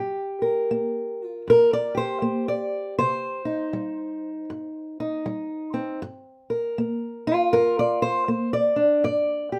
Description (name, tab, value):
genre	acoustic country blues, solo or duo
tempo	79 BPM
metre	4/4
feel	swing 62% on 8ths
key	G minor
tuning	A4 = 442 Hz
part	fingerpicked old ladder-braced acoustic guitar	solo	0.0-9.6 s	G2 to D5	-24 LUFS	equal	none
room	light reverb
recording	none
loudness	-24 LUFS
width	mono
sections	0.0-9.6 A section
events	none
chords	0.0 Gm; 3.0 Cm; 6.0 Gm